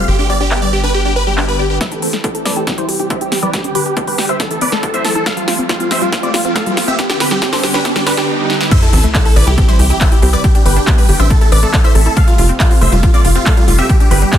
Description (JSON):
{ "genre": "uplifting trance", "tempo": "139 BPM", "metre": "4/4", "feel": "straight", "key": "A minor", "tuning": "A4 = 437 Hz", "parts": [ { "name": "big supersaw lead", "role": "melody", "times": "0.0-14.4 s", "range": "E4 to F5", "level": "-18 LUFS", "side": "right 1 dB", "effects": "phaser, sidechain pumping, low-pass filter, digital delay" }, { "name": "lush unison pad", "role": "sustained chords", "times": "0.0-14.4 s", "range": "C3 to A4", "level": "-23 LUFS", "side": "right 1 dB", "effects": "chorus, sidechain pumping" }, { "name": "wide unison pluck", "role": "arpeggios", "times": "0.0-14.4 s", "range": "G3 to D5", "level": "-23 LUFS", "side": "left 2 dB", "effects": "sidechain pumping, digital delay" }, { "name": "tight sequencer bass", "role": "bass", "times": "0.0-1.8, 8.9-14.2 s", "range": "F1 to C2", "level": "-13 LUFS", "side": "equal", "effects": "sidechain pumping" }, { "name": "big-room dance drum kit", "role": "drums", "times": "0.5-14.4 s", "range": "crash cymbal, handclaps, hi-hat, snare drum", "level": "-20 LUFS", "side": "equal", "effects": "overdrive, high-pass filter on snare, low-pass filter on snare, high-pass filter on hats, low-pass filter on hats, high-pass filter on cymbals, low-pass filter on cymbals" }, { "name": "analog pluck", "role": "second line", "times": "1.8-14.4 s", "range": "F4 to F5", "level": "-24 LUFS", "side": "equal", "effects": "chorus, sidechain pumping, digital delay" }, { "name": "electronic kick drum", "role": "drums", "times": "1.8-14.4 s", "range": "none", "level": "-13 LUFS", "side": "equal", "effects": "high-pass filter on kick, high-pass filter on room" }, { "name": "riser and sub drop", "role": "sound effects", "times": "3.6-10.4 s", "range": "none", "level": "-22 LUFS", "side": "right 1 dB", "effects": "none" } ], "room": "little or no reverb", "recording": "dense, heavily limited modern master", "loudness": "-11 LUFS", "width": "side -10 dB against mid", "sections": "0.0-1.8 A section; 1.8-8.7 B section; 8.7-14.4 C section", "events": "filter sweep on synth arpeggio sound 0.0-1.8, 1.8-8.7; build-up 1.8-8.7; drum fill 1.8-8.3, 8.5; filter sweep on supersaw synth 1.8-8.7; filter sweep on synth pluck 1.8-8.7; riser 3.6-8.7; drop 8.7-14.4; impact 8.7-10.4", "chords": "0.1 G; 1.8 Am; 2.7 C; 3.5 G; 4.4 Am; 5.3 Fadd9; 7.0 G; 8.7 Am; 9.6 C; 10.4 G; 11.3 Am; 12.2 Fadd9" }